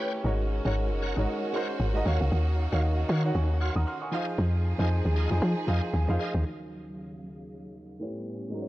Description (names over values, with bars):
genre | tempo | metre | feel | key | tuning
amapiano | 116 BPM | 4/4 | swing 58% on 16ths | Eb dorian | A4 = 440 Hz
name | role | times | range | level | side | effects
warm baby grand piano | accompaniment | 0.0-8.7 s | Eb3 to F6 | -32 LUFS | right 1 dB | low-pass filter
warm studio string section | sustained chords | 0.0-8.7 s | Eb2 to F5 | -37 LUFS | right 1 dB | low-pass filter
bright tonewheel organ | stabs | 0.0-6.3 s | Gb4 to G5 | -39 LUFS | equal | overdrive, chorus vibrato, fast rotary speaker, tape echo
deep log drum bass | bass | 0.2-6.4 s | Gb1 to F3 | -25 LUFS | equal | none
room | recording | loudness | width
studio reverb | dry, gritty hardware recording, transformer saturation, cassette tape | -25 LUFS | side -16 dB against mid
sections
0.0-6.5 A section; 6.5-8.7 B section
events
drop 0.0-6.5; grand piano fill 5.7-6.5; filter sweep 6.5-8.7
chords
0.2 Ab9sus4; 2.1 Ebm9; 4.1 Fm7; 6.5 Ebm9; 8.0 A9